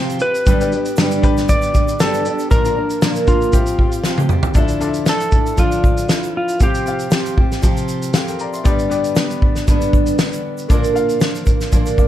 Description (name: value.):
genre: acoustic pop.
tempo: 117 BPM.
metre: 4/4.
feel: swing 55% on 16ths.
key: D minor.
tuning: A4 = 440 Hz.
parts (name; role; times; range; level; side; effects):
clear upright piano; accompaniment; 0.0-12.1 s; Bb3 to D6; -26 LUFS; left 6 dB; plate reverb.
fingerpicked steel-string acoustic guitar; accompaniment; 0.0-12.1 s; G2 to B4; -20 LUFS; right 1 dB; none.
loose indie drum kit; drums; 0.1-12.1 s; kick drum, shaker, snare drum, toms; -16 LUFS; equal; none.
egg shaker; percussion; 0.1-12.1 s; none; -38 LUFS; right 8 dB; none.
clean lap steel guitar; melody; 0.2-7.6 s; F4 to D5; -20 LUFS; equal; plate reverb, tape echo.
room: little or no reverb.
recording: dark, warm production.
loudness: -14 LUFS.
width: side -12 dB against mid.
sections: 0.0-4.6 A section; 4.6-12.1 B section.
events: drum fill 4.0-4.6.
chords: 0.5 G; 2.5 Bb; 3.5 Csus4; 4.6 Dmadd9; 6.6 Csus4; 8.7 G; 10.7 Bb.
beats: | 0.47 0.98 1.49 2.00 | 2.51 3.02 3.54 4.05 | 4.56 5.07 5.58 6.09 | 6.61 7.12 7.63 8.14 | 8.65 9.16 9.67 10.19 | 10.70 11.21 11.72.